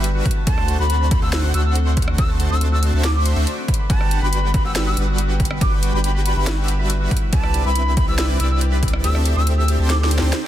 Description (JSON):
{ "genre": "future bass", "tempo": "140 BPM", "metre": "4/4", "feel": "half-time", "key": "G major", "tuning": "A4 = 442 Hz", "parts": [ { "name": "airy breathy pad", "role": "sustained chords", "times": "0.0-10.5 s", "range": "C3 to B4", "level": "-33 LUFS", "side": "right 1 dB", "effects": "none" }, { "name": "concert harp", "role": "arpeggios", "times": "0.0-10.5 s", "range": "E4 to C6", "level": "-31 LUFS", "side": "left 1 dB", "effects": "sidechain pumping, digital delay" }, { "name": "supersaw chords", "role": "riff", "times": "0.0-10.3 s", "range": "G3 to A5", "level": "-26 LUFS", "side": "right 1 dB", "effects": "sidechain pumping, digital delay" }, { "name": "saturated sub bass", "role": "bass", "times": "0.0-10.3 s", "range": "G1 to D2", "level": "-19 LUFS", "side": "equal", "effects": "sidechain pumping" }, { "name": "trap drum kit", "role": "drums", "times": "0.0-10.4 s", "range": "hi-hat, rim click, snare drum", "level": "-26 LUFS", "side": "equal", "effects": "overdrive" }, { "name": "electronic kick drum", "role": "drums", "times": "0.3-8.9 s", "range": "none", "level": "-20 LUFS", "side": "equal", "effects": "overdrive" }, { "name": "silver concert flute", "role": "melody", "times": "0.5-10.1 s", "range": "A5 to E6", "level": "-26 LUFS", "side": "left 1 dB", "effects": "sidechain pumping, ping-pong delay" } ], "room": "little or no reverb", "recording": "dense, heavily limited modern master", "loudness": "-16 LUFS", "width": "side -12 dB against mid", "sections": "0.0-10.5 A section", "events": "kick drops out 9.0-10.5; drum fill 9.9-10.5", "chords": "0.3 D7; 3.7 Gmaj7; 7.1 Cmaj9; 9.0 D7sus4", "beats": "0.04 | 0.47 0.90 1.33 1.75 | 2.18 2.61 3.04 3.47 | 3.90 4.33 4.75 5.18 | 5.61 6.04 6.47 6.90 | 7.33 7.75 8.18 8.61 | 9.04 9.47 9.90 10.33" }